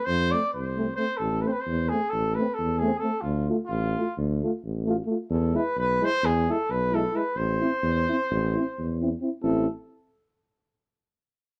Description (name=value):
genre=balkan folk, Balkan brass band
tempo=262 BPM (eighths)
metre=9/8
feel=straight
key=A harmonic minor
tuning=A4 = 440 Hz
part: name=mellow cornet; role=melody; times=0.0-9.7 s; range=F4 to D5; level=-30 LUFS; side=equal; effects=none
part: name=mellow tuba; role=bass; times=0.1-9.7 s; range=A1 to F2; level=-30 LUFS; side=equal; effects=none
part: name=mellow euphonium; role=accompaniment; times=0.3-9.7 s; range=C4 to F4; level=-33 LUFS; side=equal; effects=none
part: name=mellow euphonium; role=accompaniment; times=0.3-9.7 s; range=G#3 to C4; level=-32 LUFS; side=equal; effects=none
room=light reverb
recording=dark, warm production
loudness=-26 LUFS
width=mono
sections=0.0-9.4 A section; 9.4-11.5 B section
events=none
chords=0.0 F; 1.2 Am; 3.2 Dm; 5.3 E; 7.4 Am